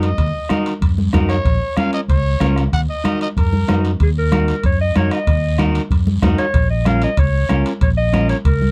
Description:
latin, cumbia; 189 BPM; 4/4; straight; Eb minor; A4 = 435 Hz
growling trumpet; second line; 0.0-3.8 s; Bb4 to Gb5; -26 LUFS; equal
electric guitar at the edge of break-up; accompaniment; 0.0-8.4 s; Db4 to Bb4; -24 LUFS; equal
fingered electric bass; bass; 0.0-8.7 s; Bb1 to Gb2; -20 LUFS; equal
guiro; percussion; 0.0-8.7 s; -42 LUFS; equal
timbales; percussion; 0.0-8.6 s; -33 LUFS; equal
bombo; percussion; 0.2-8.6 s; -22 LUFS; equal
congas; percussion; 0.5-8.7 s; -25 LUFS; equal
breathy clarinet; melody; 4.0-8.7 s; Ab4 to F5; -24 LUFS; equal
little or no reverb; dry, close 1970s-style studio recording; -17 LUFS; mono
0.0-4.0 A section; 4.0-8.7 B section
trumpet solo 0.0-4.0
0.0 Ebm; 1.5 Bbm; 2.7 Ebm; 6.5 Bbm

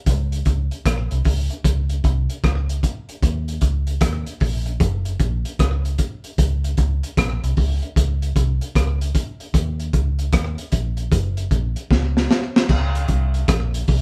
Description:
roots reggae; 76 BPM; 4/4; swing 64% on 16ths; A4 = 440 Hz
vintage muted fingered electric bass; bass; 0.1-14.0 s; Gb1 to Eb2; -24 LUFS; equal
crunchy breakbeat drum kit; drums; 0.1-14.0 s; crash cymbal, hi-hat, kick drum, rim click, snare drum; -22 LUFS; equal
light reverb; band playing live in one room; -21 LUFS; mono
0.0-12.7 A section; 12.7-14.0 B section
drum fill 11.9-12.7

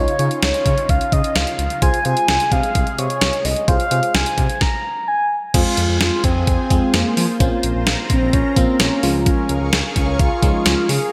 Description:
synth-pop; 129 BPM; 4/4; straight; A4 = 439 Hz
mellow horn-like synth lead; melody; 0.0-11.1 s; Bb3 to Bb5; -23 LUFS; equal; chorus
FM electric piano; accompaniment; 0.0-10.9 s; F3 to Db5; -27 LUFS; equal; chorus
lush unison pad; sustained chords; 0.0-11.1 s; C3 to Db6; -31 LUFS; equal; chorus, phaser
smooth synth bass; bass; 0.0-11.0 s; Bb1 to F3; -24 LUFS; equal
detuned 8-bit digital drum machine; drums; 0.1-11.0 s; crash cymbal, hi-hat, kick drum, snare drum; -21 LUFS; equal; gated reverb
moderate lush hall reverb, RT60 1.9 s; bright 1980s-style digital production; -18 LUFS; mono
0.0-5.5 A section; 5.5-11.1 B section
stop 4.6-5.5
0.0 Dbadd9; 1.8 Fm/C; 5.5 Fm; 7.4 Bbmadd9; 9.0 Db

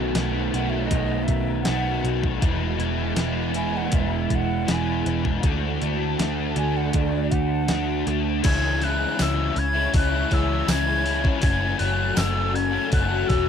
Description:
rock, shoegaze and dream pop; 80 BPM; 4/4; straight; A4 = 441 Hz
crunchy overdriven guitar; riff; 0.0-13.5 s; E2 to F#4; -26 LUFS; left 8 dB; ensemble chorus
crunchy overdriven guitar; riff; 0.0-8.4 s; E2 to F#4; -28 LUFS; right 11 dB; reverse reverb
vintage muted picked electric bass; bass; 0.0-13.5 s; E1 to D2; -26 LUFS; equal
clean 12-bit digital drum machine; drums; 0.1-13.5 s; crash cymbal, hi-hat, kick drum, snare drum; -24 LUFS; equal; overdrive
reedy concert flute; melody; 0.5-13.5 s; D5 to G#6; -28 LUFS; right 2 dB; analog delay
lush unison pad; sustained chords; 9.0-13.5 s; E4 to G#5; -34 LUFS; right 2 dB; chorus
tambourine; percussion; 9.2-12.3 s; -36 LUFS; right 19 dB
little or no reverb; dark, warm production; -20 LUFS; side -8 dB against mid
0.0-8.4 A section; 8.4-13.5 A section
0.0 B7; 2.4 E; 5.4 D; 8.4 C#m; 11.4 F#madd9

